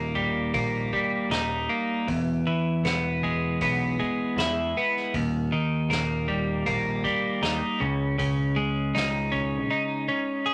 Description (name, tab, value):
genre	psychedelic rock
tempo	78 BPM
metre	4/4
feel	straight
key	Eb phrygian dominant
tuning	A4 = 441 Hz
part	twelve-string electric guitar	riff	0.0-10.5 s	Eb2 to Ab4	-27 LUFS	equal	none
part	growling picked electric bass	bass	0.0-9.7 s	Eb1 to E2	-35 LUFS	equal	overdrive
part	soft-mallet drum kit	drums	0.2-9.5 s	hi-hat, kick drum, snare drum	-38 LUFS	equal	none
room	moderate studio reverb, RT60 0.8 s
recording	none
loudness	-26 LUFS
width	mono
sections	0.0-10.5 A section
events	none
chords	0.0 Eb; 2.1 E; 5.1 Eb; 7.8 Dbsus2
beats	0.54 1.30 | 2.07 2.84 3.60 4.37 | 5.13 5.90 6.66 7.43 | 8.19 8.95 9.71 10.48